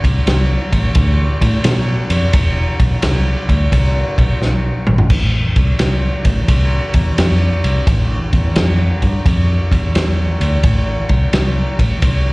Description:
blues rock power trio and southern rock; 87 BPM; 4/4; swing 66% on 8ths; A minor; A4 = 440 Hz
vintage muted fingered electric bass; bass; 0.0-12.3 s; E1 to B2; -15 LUFS; equal
vintage drum kit; drums; 0.0-12.2 s; crash cymbal, kick drum, ride cymbal, snare drum, toms; -16 LUFS; equal
little or no reverb; live gig heard through the venue's PA, recital hall reverb; -12 LUFS; side -24 dB against mid
0.0-5.1 A section; 5.1-12.3 B section
drum fill 4.4-5.1
0.27 0.96 1.65 | 2.34 3.03 3.72 4.41 | 5.10 5.79 6.49 7.18 | 7.87 8.56 9.26 9.95 | 10.64 11.34 12.03

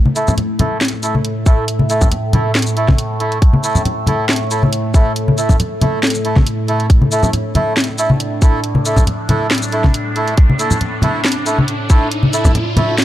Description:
deep dubstep; 138 BPM; 4/4; swing 54% on 16ths, half-time; A4 = 439 Hz
overtone-sweeping drone; sustained chords; 0.0-13.0 s; A2 to D4; -21 LUFS; right 1 dB; chorus, built-in reverb
congas; percussion; 0.1-12.9 s; -16 LUFS; left 1 dB
melodica; stabs; 0.2-13.0 s; A3 to A4; -20 LUFS; right 1 dB; low-pass filter, dub echo
garage drum kit; drums; 0.2-13.0 s; hi-hat, shaker, snare drum; -19 LUFS; left 1 dB; overdrive
electronic kick drum; drums; 1.5-12.5 s; -10 LUFS; equal; overdrive
riser; sound effects; 9.1-13.0 s; -27 LUFS; equal
digital ambience; dry, gritty hardware recording; -12 LUFS; side -13 dB against mid
0.0-13.0 A section
build-up 0.0-13.0; riser 9.1-13.0
0.0 A5
0.38 0.81 1.25 | 1.68 2.12 2.55 2.99 | 3.42 3.86 4.29 4.72 | 5.16 5.59 6.03 6.46 | 6.90 7.33 7.77 8.20 | 8.64 9.07 9.51 9.94 | 10.38 10.81 11.25 11.68 | 12.12 12.55 12.99

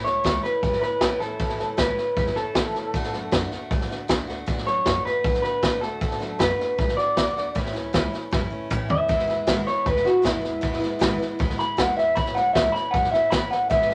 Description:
rockabilly; 156 BPM; 4/4; straight; A major; A4 = 437 Hz
electric guitar through a small old amp; melody; 0.0-13.9 s; E4 to B5; -25 LUFS; equal
picked steel-string acoustic guitar; accompaniment; 0.0-13.9 s; E2 to F#4; -35 LUFS; equal
upright bass; bass; 0.1-13.9 s; E1 to F#2; -37 LUFS; equal
vintage drum kit; drums; 0.1-13.9 s; hi-hat, kick drum, snare drum, toms; -28 LUFS; equal
moderate studio reverb, RT60 0.6 s; -23 LUFS; mono
0.0-13.9 A section
clean electric guitar solo 0.0-13.9; drum fill 8.3-9.1
0.0 A; 2.9 D; 7.6 A; 9.1 E; 12.2 A
0.24 0.63 1.01 | 1.40 1.78 2.17 2.55 | 2.94 3.32 3.71 4.09 | 4.48 4.86 5.25 5.63 | 6.02 6.40 6.79 7.17 | 7.55 7.94 8.32 8.71 | 9.09 9.48 9.86 10.25 | 10.63 11.02 11.40 11.78 | 12.17 12.55 12.94 13.32 | 13.71

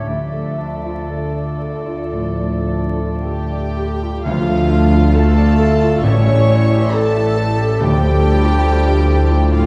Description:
classical, romantic movement for piano and orchestra; 51-71 BPM; 4/4; rubato; D minor; A4 = 440 Hz
clear concert grand piano; melody; 0.0-9.7 s; A1 to E5; -22 LUFS; equal
warm symphonic violin section; melody; 0.0-9.7 s; A4 to C#6; -31 LUFS; equal
clear oboe; second line; 0.0-9.7 s; D5 to F5; -32 LUFS; equal
large flute ensemble; second line; 0.0-9.7 s; F4 to E5; -29 LUFS; equal
warm chamber violin section; second line; 0.0-9.7 s; F4 to C#5; -31 LUFS; equal
warm clarinet; second line; 0.0-9.7 s; F4 to C#5; -29 LUFS; equal
clear bassoon; accompaniment; 0.0-9.7 s; F3 to A3; -31 LUFS; equal
dark chamber viola section; accompaniment; 0.0-9.7 s; E3 to A4; -28 LUFS; equal
warm French horn section; sustained chords; 0.0-9.7 s; D3 to D4; -27 LUFS; equal
rich symphonic cello section; bass; 0.0-9.7 s; D2 to D3; -26 LUFS; equal
warm symphonic double bass section; bass; 0.0-9.7 s; A1 to D2; -22 LUFS; equal
mellow tuba; bass; 4.2-9.7 s; A1 to D2; -26 LUFS; equal
timpani; percussion; 4.3-9.1 s; A2 to D3; -26 LUFS; equal
wet scoring stage reverb, RT60 1.5 s; heard from further back in the room, vinyl crackle; -16 LUFS; mono
0.0-4.2 A section; 4.2-9.7 B section
0.1 Dm; 6.0 A7; 7.8 Dm
| 0.08 1.10 2.13 3.25 | 4.25 5.15 6.04 6.94 | 7.81 8.66 9.52

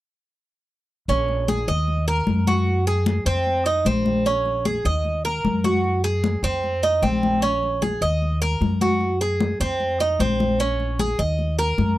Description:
latin, Cuban son and guajira; 152 BPM; 4/4; straight; Bb minor; A4 = 439 Hz
Cuban tres; arpeggios; 1.1-12.0 s; C4 to Eb5; -22 LUFS; right 2 dB
upright bass; bass; 1.1-12.0 s; Bb1 to Gb2; -24 LUFS; equal
congas; percussion; 1.1-12.0 s; -25 LUFS; left 3 dB
light reverb; dry, close 1970s-style studio recording; -19 LUFS; side -16 dB against mid
1.1-12.0 A section
1.1 Bbm7; 1.9 Ebm; 2.7 Gbsus2; 3.5 F5; 4.3 Bbm7; 5.1 Ebm; 5.8 Gbsus2; 6.6 F5; 7.4 Bbm7; 8.2 Ebm; 9.0 Gbsus2; 9.8 F5; 10.6 Bbm7; 11.4 Ebm
| 1.09 1.49 1.88 2.28 | 2.67 3.07 3.47 3.86 | 4.26 4.66 5.05 5.45 | 5.84 6.24 6.63 7.03 | 7.43 7.82 8.22 8.62 | 9.01 9.41 9.80 10.20 | 10.60 10.99 11.39 11.79

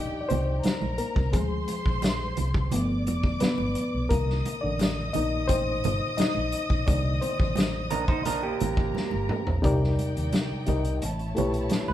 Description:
lush 1970s-style soul; 87 BPM; 4/4; straight; C dorian; A4 = 440 Hz
warm studio violin section; second line; 0.0-11.9 s; Eb4 to Eb6; -35 LUFS; left 1 dB
reed electric piano; accompaniment; 0.0-11.9 s; C3 to Eb5; -29 LUFS; left 2 dB; fast tremolo
vintage muted fingered electric bass; bass; 0.0-11.9 s; F1 to Eb2; -30 LUFS; equal
vintage drum kit; drums; 0.3-11.9 s; hi-hat, kick drum, snare drum, toms; -28 LUFS; equal
congas; percussion; 0.3-11.9 s; -34 LUFS; right 6 dB
electric guitar through a small old amp; riff; 7.9-11.9 s; Bb3 to C5; -29 LUFS; right 5 dB
moderate large studio reverb, RT60 1.0 s; band playing live in one room; -24 LUFS; side -12 dB against mid
0.0-9.6 A section; 9.6-11.9 B section
reed electric piano solo 0.0-9.6; drum fill 8.9-9.6
0.0 Ebmaj7; 1.3 Dm7b5; 2.7 G7; 4.1 Cm9; 11.0 A7
0.64 | 1.33 2.03 2.72 3.41 | 4.11 4.80 5.49 6.18 | 6.87 7.56 8.26 8.95 | 9.64 10.33 11.02 11.72

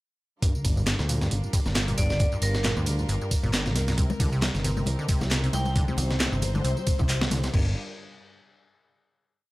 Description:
breakbeat, breaks; 135 BPM; 4/4; swing 56% on 16ths; G minor; A4 = 441 Hz
warm chamber string section; sustained chords; 0.4-7.7 s; C3 to C5; -36 LUFS; left 1 dB; sidechain pumping
deep acid bass; riff; 0.4-7.7 s; F2 to G3; -31 LUFS; equal
breakbeat sampler-style drum kit; drums; 0.4-7.6 s; crash cymbal, hi-hat, kick drum, snare drum; -26 LUFS; equal; studio reverb
house drum kit; drums; 0.4-7.5 s; handclaps, ride cymbal, tambourine; -34 LUFS; right 1 dB; studio reverb
picked electric bass; bass; 0.6-7.7 s; G1 to D2; -27 LUFS; equal
vibraphone with hard mallets; melody; 2.0-2.6, 5.5-5.7 s; Bb4 to G5; -33 LUFS; right 1 dB; AM radio sound, tape echo
congas; percussion; 4.1-7.4 s; -34 LUFS; left 4 dB
digital ambience; dry, gritty hardware recording, transformer saturation; -23 LUFS; side -19 dB against mid
0.4-7.5 drop; 7.5-9.3 final chord
drop 0.4-7.5
0.4 Gm7; 4.0 Cm7; 7.5 Gm7
| 0.42 0.87 1.31 1.76 | 2.20 2.65 3.09 3.53 | 3.98 4.42 4.87 5.31 | 5.76 6.20 6.64 7.09 | 7.53

